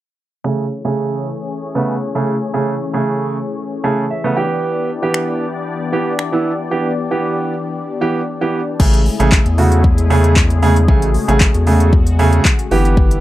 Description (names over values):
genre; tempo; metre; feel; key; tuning
dance-pop; 115 BPM; 4/4; straight; A major; A4 = 437 Hz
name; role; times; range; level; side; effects
warm baby grand piano; accompaniment; 0.4-13.2 s; C#3 to A5; -17 LUFS; right 3 dB; sidechain pumping, low-pass filter
filtered supersaw swell; sustained chords; 0.4-13.2 s; C#3 to D5; -23 LUFS; left 4 dB; sidechain pumping, low-pass filter
deep house drum kit; drums; 5.1-13.2 s; crash cymbal, finger snaps, handclaps, hi-hat, kick drum; -14 LUFS; left 1 dB; none
saturated sub bass; bass; 8.8-13.2 s; G1 to E2; -13 LUFS; left 1 dB; sidechain pumping
room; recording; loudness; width
little or no reverb; dry, close 1970s-style studio recording; -13 LUFS; side -15 dB against mid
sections
0.5-8.8 A section; 8.8-13.2 B section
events
filter sweep 0.5-8.8; grand piano fill 3.6-4.6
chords
0.5 Amaj7; 4.4 G6; 8.8 Amaj7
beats
| 0.45 0.97 1.49 2.02 | 2.54 3.06 3.58 4.10 | 4.62 5.15 5.67 6.19 | 6.71 7.23 7.75 8.28 | 8.80 9.32 9.84 10.36 | 10.88 11.41 11.93 12.45 | 12.97